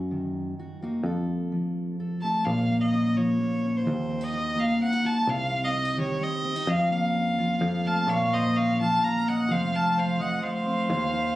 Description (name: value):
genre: acoustic folk duo or small band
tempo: 128 BPM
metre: 3/4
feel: straight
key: Bb harmonic minor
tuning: A4 = 440 Hz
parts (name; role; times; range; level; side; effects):
- fingerpicked steel-string acoustic guitar; accompaniment; 0.0-11.4 s; F2 to A4; -27 LUFS; equal; none
- picked electric bass; bass; 0.0-11.4 s; F1 to Gb2; -30 LUFS; equal; none
- rich fiddle; melody; 2.2-11.4 s; C5 to Bb5; -27 LUFS; equal; none
- mellow accordion; second line; 7.9-11.4 s; C5 to F5; -32 LUFS; right 1 dB; none
room: light reverb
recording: recorded on a phone in the room, club reverb, compression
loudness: -23 LUFS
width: side -15 dB against mid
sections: 0.0-2.5 A section; 2.5-11.4 B section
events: none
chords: 0.0 Ebm/Gb; 1.0 F; 2.5 Bbm; 3.9 Ebm; 5.3 Cm; 6.7 Bbm/F; 7.6 F; 8.1 Bbm; 9.5 F